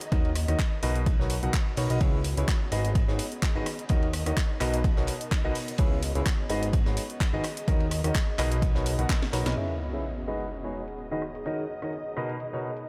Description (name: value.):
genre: piano house.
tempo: 127 BPM.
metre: 4/4.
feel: swing 55% on 16ths.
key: G# minor.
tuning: A4 = 440 Hz.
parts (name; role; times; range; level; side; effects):
house drum kit; drums; 0.0-12.9 s; handclaps, hi-hat, rim click, snare drum; -39 LUFS; equal; low-pass filter on hats, low-pass filter on snare, low-pass filter on room.
ethereal airy pad; texture; 0.0-12.9 s; G#4 to D#5; -42 LUFS; equal; ensemble chorus, built-in reverb, sidechain pumping.
clear grand piano; riff; 0.1-12.7 s; B2 to F#5; -34 LUFS; equal; sidechain pumping, low-pass filter, analog delay.
fat analog bass; bass; 0.1-9.5 s; G#1 to D#2; -31 LUFS; equal; sidechain pumping.
electronic kick drum; drums; 0.1-9.2 s; none; -28 LUFS; equal; overdrive.
loose indie drum kit; drums; 0.1-9.6 s; hi-hat, ride cymbal, snare drum; -48 LUFS; equal; none.
sub drop; sound effects; 9.6-11.5 s; none; -40 LUFS; equal; none.
room: light reverb, studio reverb.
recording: none.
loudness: -28 LUFS.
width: mono.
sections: 0.0-9.6 A section; 9.6-12.9 B section.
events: drum fill 9.1-9.6; impact 9.6-11.5.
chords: 0.0 D#m7; 0.8 Bmaj7; 2.0 C#m7; 2.7 G#m7; 3.7 D#m7; 4.6 Bmaj7; 5.8 C#m7; 6.5 G#m7; 7.4 D#m7; 8.4 Bmaj7; 9.6 C#m7; 10.3 G#m7; 11.2 D#m7; 12.2 Bmaj7.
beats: | 0.12 0.59 1.06 1.54 | 2.01 2.48 2.95 3.43 | 3.90 4.37 4.84 5.32 | 5.79 6.26 6.73 7.21 | 7.68 8.15 8.62 9.10 | 9.57 10.04 10.51 10.98 | 11.46 11.93 12.40 12.88.